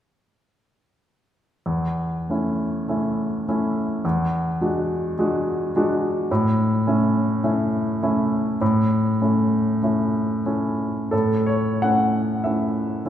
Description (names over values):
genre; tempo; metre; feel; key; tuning
classical, romantic character piece for solo piano; 82-109 BPM; 4/4; rubato; A major; A4 = 440 Hz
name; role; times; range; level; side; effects
warm baby grand piano; solo; 1.7-13.1 s; E2 to F#5; -20 LUFS; equal; none
room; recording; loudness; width
wet recital hall reverb, RT60 1.9 s; heard from further back in the room, lossy compression artefacts; -20 LUFS; side -10 dB against mid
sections
1.7-11.1 A section; 11.1-13.1 B section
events
none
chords
1.7 A/E; 4.0 E9; 6.3 A